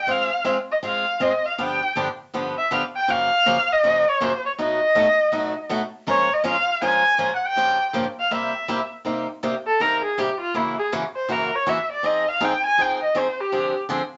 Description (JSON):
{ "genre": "jazz", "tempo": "161 BPM", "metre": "4/4", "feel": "swing 61% on 8ths", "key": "unclear", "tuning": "A4 = 440 Hz", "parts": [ { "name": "dark erhu", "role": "melody", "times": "0.0-13.8 s", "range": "E4 to Ab5", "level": "-22 LUFS", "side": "equal", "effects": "none" }, { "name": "picked swing-style acoustic guitar", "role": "accompaniment", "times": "0.1-14.0 s", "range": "Gb2 to Bb4", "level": "-28 LUFS", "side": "equal", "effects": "none" } ], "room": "moderate studio reverb, RT60 0.5 s", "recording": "nothing above 7.9 kHz", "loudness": "-22 LUFS", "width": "mono", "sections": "0.0-9.1 A section; 9.1-14.2 B section", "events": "erhu solo 9.1-14.2", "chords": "0.1 Ab6; 1.6 G7; 3.1 Gbmaj7; 4.6 B7; 6.1 Bbm7; 7.6 Gm7b5; 8.3 C7; 9.1 Cm7; 10.5 F#7; 12.0 Fm7; 13.5 Dm7b5", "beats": "| 0.08 0.46 0.83 1.21 | 1.58 1.96 2.33 2.70 | 3.08 3.45 3.83 4.20 | 4.57 4.95 5.32 5.69 | 6.07 6.44 6.81 7.19 | 7.56 7.93 8.30 8.68 | 9.05 9.42 9.80 10.17 | 10.54 10.91 11.29 11.66 | 12.03 12.41 12.78 13.15 | 13.52 13.90" }